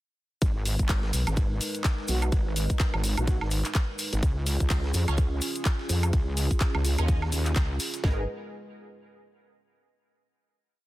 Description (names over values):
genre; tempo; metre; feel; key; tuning
bass house; 126 BPM; 4/4; swing 58% on 16ths; G# dorian; A4 = 439 Hz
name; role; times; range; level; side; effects
dark analog pad; sustained chords; 0.4-8.3 s; G#3 to B4; -36 LUFS; right 2 dB; lush chorus, sidechain pumping
wobble bass; bass; 0.4-8.3 s; G#1 to E#2; -27 LUFS; equal; chorus, overdrive, sidechain pumping
breakbeat sampler-style drum kit; drums; 0.4-8.0 s; hi-hat, ride cymbal, snare drum; -43 LUFS; right 2 dB; none
garage drum kit; drums; 0.4-8.2 s; kick drum, snare drum; -25 LUFS; equal; none
garage drum kit; drums; 0.4-8.0 s; handclaps, hi-hat, woodblock; -32 LUFS; right 1 dB; none
cabasa; percussion; 0.4-8.0 s; none; -39 LUFS; left 4 dB; none
breathy flute-like synth lead; melody; 2.1-3.4 s; F#4; -39 LUFS; right 1 dB; wide subtle chorus, cassette tape, dub echo
band-passed chord stab; stabs; 5.1-8.2 s; B3 to D#5; -39 LUFS; right 1 dB; phaser, ensemble chorus, sidechain pumping, dub echo
room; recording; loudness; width
digital ambience; dense, heavily limited modern master; -24 LUFS; side -17 dB against mid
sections
0.4-8.0 drop; 8.0-9.9 final chord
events
drop 0.4-8.0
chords
0.4 G#madd9; 4.2 C#; 8.0 G#madd9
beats
| 0.42 0.89 1.37 1.85 | 2.32 2.80 3.27 3.75 | 4.23 4.70 5.18 5.66 | 6.13 6.61 7.08 7.56 | 8.04